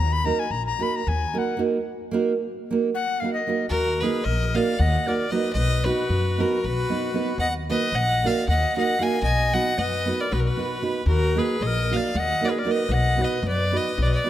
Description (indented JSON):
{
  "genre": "balkan folk",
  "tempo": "228 BPM (eighths)",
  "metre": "7/8",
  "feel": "straight",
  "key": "Eb harmonic minor",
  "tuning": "A4 = 440 Hz",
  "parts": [
    { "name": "bright reedy tenor recorder", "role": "second line", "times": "0.0-14.3 s", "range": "F#4 to Cb6", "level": "-28 LUFS", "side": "left 4 dB", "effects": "none" },
    { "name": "upright bass", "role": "bass", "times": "0.0-14.1 s", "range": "Bb1 to F#2", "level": "-24 LUFS", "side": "left 1 dB", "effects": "none" },
    { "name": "nylon-string guitar", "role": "accompaniment", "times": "0.2-14.3 s", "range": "Bb3 to B4", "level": "-26 LUFS", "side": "right 4 dB", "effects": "none" },
    { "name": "clear fiddle", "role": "melody", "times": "3.7-14.3 s", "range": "Bb4 to Ab5", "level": "-26 LUFS", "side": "equal", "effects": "none" }
  ],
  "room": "light reverb",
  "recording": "none",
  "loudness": "-21 LUFS",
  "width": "side -12 dB against mid",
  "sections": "0.0-3.7 A section; 3.7-14.3 B section",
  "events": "recorder solo 0.0-3.7",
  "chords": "0.0 Ebm; 5.5 B; 7.4 Ebm; 9.2 B; 11.1 Ebm; 12.9 B"
}